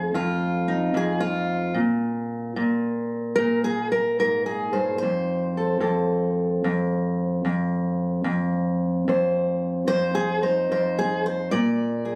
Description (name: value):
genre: acoustic country blues, solo or duo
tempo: 74 BPM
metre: 4/4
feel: swing 66% on 8ths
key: F mixolydian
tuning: A4 = 441 Hz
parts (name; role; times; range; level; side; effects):
- fingerpicked steel-string acoustic guitar; solo; 0.0-12.2 s; F2 to D5; -24 LUFS; equal; none
room: moderate small room reverb, RT60 0.5 s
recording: recorded on a phone in the room, club reverb, compression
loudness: -24 LUFS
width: mono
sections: 0.0-12.2 A section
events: none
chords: 0.0 F7; 1.8 N.C.; 5.0 F7; 11.5 Bb7